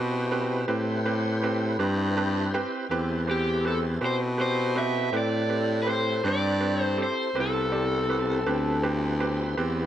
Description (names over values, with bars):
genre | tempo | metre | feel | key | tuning
blues | 54 BPM (dotted quarters) | 12/8 | straight | A minor | A4 = 440 Hz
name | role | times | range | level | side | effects
bright concert grand piano | accompaniment | 0.0-9.9 s | C4 to A5 | -31 LUFS | right 4 dB | none
tonewheel organ | sustained chords | 0.0-9.9 s | B3 to C5 | -34 LUFS | left 2 dB | slow rotary speaker, overdrive, chorus vibrato
warm baritone saxophone | bass | 0.0-9.9 s | C2 to B2 | -27 LUFS | left 1 dB | none
raw garage guitar | melody | 3.3-8.8 s | G4 to E5 | -28 LUFS | equal | overdrive
room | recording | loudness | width
light reverb, small room ambience | none | -24 LUFS | side -11 dB against mid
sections
0.0-9.9 A section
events
grand piano fill 1.8-2.9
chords
0.0 Am9